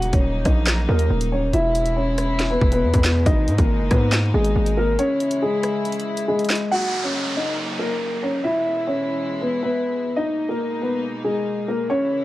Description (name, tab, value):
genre	hip hop, drill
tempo	139 BPM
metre	4/4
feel	half-time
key	Eb phrygian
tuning	A4 = 440 Hz
part	dark concert grand piano	melody	0.0-12.2 s	Ab3 to Gb5	-22 LUFS	left 1 dB	tape echo
part	warm studio string section	sustained chords	0.0-12.2 s	B2 to E4	-30 LUFS	equal	none
part	distorted 808-style bass	bass	0.0-5.0 s	Eb1 to Ab2	-20 LUFS	equal	distortion
part	drill drum kit	drums	0.0-6.6 s	handclaps, hi-hat, kick drum, rim click, snare drum	-21 LUFS	equal	none
part	downlifter and riser	sound effects	6.7-12.2 s	none	-30 LUFS	right 2 dB	none
room	digital ambience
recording	dry, gritty hardware recording, cassette tape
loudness	-18 LUFS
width	side -16 dB against mid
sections	0.0-6.7 A section; 6.7-12.2 B section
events	break 5.0-6.7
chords	0.0 Ebm7; 1.5 E; 3.3 Abmadd9; 5.0 Dbm; 6.7 Ebm7; 8.4 E; 10.2 Abmadd9